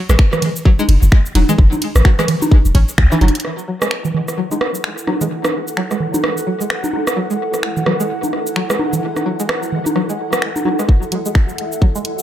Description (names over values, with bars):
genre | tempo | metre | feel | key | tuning
minimal techno | 129 BPM | 4/4 | swing 59% on 16ths | F# minor | A4 = 440 Hz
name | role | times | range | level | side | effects
string-like resonator pluck | riff | 0.1-12.0 s | E3 to C#4 | -23 LUFS | left 1 dB | chorus, phaser, sidechain pumping, tape echo
punchy sub bass | bass | 0.1-3.3 s | E1 to C#2 | -12 LUFS | equal | sidechain pumping
garage drum kit | drums | 0.1-12.2 s | finger snaps, hi-hat, ride cymbal, shaker | -24 LUFS | equal | studio reverb
electronic rim click, congas and bongos | percussion | 0.1-10.9 s | none | -19 LUFS | right 1 dB | studio reverb, tape echo
electronic kick drum | drums | 0.2-3.1, 10.9-11.9 s | none | -11 LUFS | equal | studio reverb
bubbling stepped-filter texture | texture | 4.2-12.2 s | E5 to F#5 | -31 LUFS | right 1 dB | chorus, built-in reverb, sidechain pumping
granular cloud pad | texture | 4.2-12.2 s | E4 to F#5 | -25 LUFS | right 1 dB | built-in reverb, sidechain pumping
room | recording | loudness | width
light reverb | echo-heavy mix | -14 LUFS | side -12 dB against mid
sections
0.0-3.4 A section; 3.4-10.9 B section; 10.9-12.2 C section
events
drop 0.0-3.4; band accent 3.0; drum fill 3.2; build-up 10.9-12.2; filter sweep on synth pluck 10.9-12.2; filter sweep 10.9-12.2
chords
0.0 F#m7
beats
0.19 0.66 1.12 | 1.58 2.05 2.52 2.98 | 3.45 3.91 4.38 4.84 | 5.31 5.77 6.24 6.70 | 7.17 7.63 8.10 8.56 | 9.03 9.49 9.96 10.42 | 10.89 11.35 11.82